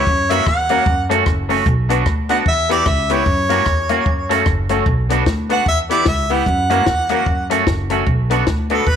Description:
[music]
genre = ska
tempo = 150 BPM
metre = 4/4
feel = swing 60% on 8ths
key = B minor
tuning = A4 = 439 Hz
[part]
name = warm harmonica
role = melody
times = 0.0-9.0 s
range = A4 to F#5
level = -18 LUFS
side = right 1 dB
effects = none
[part]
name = twangy electric guitar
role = accompaniment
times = 0.0-8.8 s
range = A3 to G4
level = -21 LUFS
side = right 13 dB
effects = spring reverb, tape echo
[part]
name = honky-tonk upright piano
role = stabs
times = 0.0-8.8 s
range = A3 to B4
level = -22 LUFS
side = left 11 dB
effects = tube saturation, tape echo
[part]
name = upright bass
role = bass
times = 0.1-9.0 s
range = F#1 to F#2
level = -21 LUFS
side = right 1 dB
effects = none
[part]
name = compact cocktail drum kit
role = drums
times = 0.1-9.0 s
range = hi-hat, kick drum, rim click, snare drum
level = -20 LUFS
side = left 1 dB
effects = none
[sound]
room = light reverb, studio reverb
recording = 1960s-style stereo with parts hard left and right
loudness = -14 LUFS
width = side -8 dB against mid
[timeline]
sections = 0.0-9.0 A section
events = none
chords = 0.1 F#; 0.9 F#m; 1.7 Bm; 2.5 Em; 3.3 F#; 4.1 F#m; 4.9 Bm; 5.7 Em; 6.5 F#; 7.3 F#m; 8.1 Bm

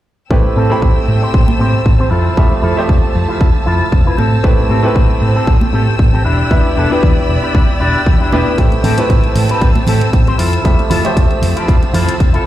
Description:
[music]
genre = nu-disco, nu disco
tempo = 116 BPM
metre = 4/4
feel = swing 54% on 16ths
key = A minor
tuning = A4 = 439 Hz
[part]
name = clear grand piano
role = accompaniment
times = 0.3-12.5 s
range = F3 to B5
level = -19 LUFS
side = equal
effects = sidechain pumping, digital delay
[part]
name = rich studio string section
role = sustained chords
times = 0.3-12.5 s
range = C4 to E6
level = -22 LUFS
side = right 1 dB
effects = sidechain pumping
[part]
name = hollow-body short-scale picked electric bass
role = bass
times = 0.3-12.4 s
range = E1 to A2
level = -15 LUFS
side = equal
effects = none
[part]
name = electronic kick drum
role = drums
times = 0.3-12.3 s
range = none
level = -12 LUFS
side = equal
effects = none
[part]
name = electric guitar with an envelope filter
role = riff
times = 0.6-12.5 s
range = C4 to C5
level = -20 LUFS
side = left 2 dB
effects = wide subtle chorus, low-pass filter, digital delay
[part]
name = congas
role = percussion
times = 1.5-12.1 s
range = none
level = -21 LUFS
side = right 4 dB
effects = none
[part]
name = electronic hi-hat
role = drums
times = 8.6-12.4 s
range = none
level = -28 LUFS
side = equal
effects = none
[sound]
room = studio ambience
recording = played on a big sound system in a bare room, large studio reverb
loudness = -10 LUFS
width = side -13 dB against mid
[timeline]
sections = 0.3-12.5 A section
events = filter sweep on clean electric guitar 0.3-12.5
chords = 0.3 Am7; 2.1 Fmaj7; 4.2 Am7; 6.3 Em7; 8.6 Am7; 10.4 Fmaj7

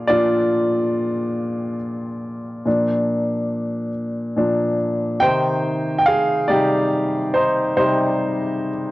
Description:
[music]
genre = pop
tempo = 47 BPM (dotted quarters)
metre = 6/8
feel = straight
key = C minor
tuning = A4 = 439 Hz
[part]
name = clear baby grand piano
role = solo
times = 0.0-8.9 s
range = Bb2 to G5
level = -18 LUFS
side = equal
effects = cassette tape
[sound]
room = moderate booth ambience, RT60 0.2 s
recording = home recording on cassette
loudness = -18 LUFS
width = side -18 dB against mid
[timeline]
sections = 0.0-2.7 A section; 2.7-5.2 B section; 5.2-8.9 C section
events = grand piano solo 0.0-2.7, 2.7-5.2, 5.2-8.9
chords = 0.0 Bb; 5.2 Cm

